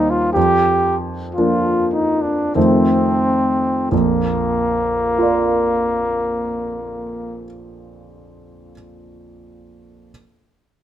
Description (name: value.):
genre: classical, romantic duo for trumpet and grand piano.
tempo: 41-65 BPM.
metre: 3/4.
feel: rubato.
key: Bb major.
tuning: A4 = 440 Hz.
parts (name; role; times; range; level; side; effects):
dark trumpet; melody; 0.0-7.4 s; Bb3 to G4; -18 LUFS; left 1 dB; none.
clear grand piano; accompaniment; 0.0-10.1 s; Bb1 to D5; -19 LUFS; right 1 dB; none.
room: moderate studio reverb, RT60 0.8 s.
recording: minimal, uncompressed stereo recording.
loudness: -15 LUFS.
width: side -11 dB against mid.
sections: 0.0-3.9 A section; 3.9-7.8 B section.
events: slowing down 0.0-3.9.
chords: 0.4 Bb/F; 2.5 F7; 3.9 Bb.